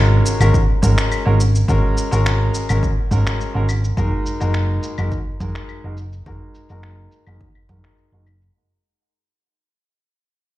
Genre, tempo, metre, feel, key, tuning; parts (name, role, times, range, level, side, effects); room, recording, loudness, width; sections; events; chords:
sunset chillout; 105 BPM; 4/4; straight; A4 = 435 Hz
clear baby grand piano; accompaniment; 0.0-8.2 s; Ab3 to Bb4; -23 LUFS; left 1 dB; auto-pan, low-pass filter, tape echo
hollow-body short-scale fingered electric bass; bass; 0.0-8.5 s; Gb1 to Ab2; -17 LUFS; equal
electronic shaker, claves and finger snaps; drums; 0.3-8.5 s; -27 LUFS; left 1 dB; low-pass filter on hats, studio reverb, low-pass filter on perc, low-pass filter on snare
electronic kick drum; drums; 0.5-7.8 s; -21 LUFS; equal; studio reverb
digital ambience; played on a big sound system in a bare room, large studio reverb; -15 LUFS; side -16 dB against mid
0.0-8.5 A section
fade-out 0.0-8.5; filter sweep on grand piano 0.0-8.5
0.0 Ab9sus4; 4.0 Gb69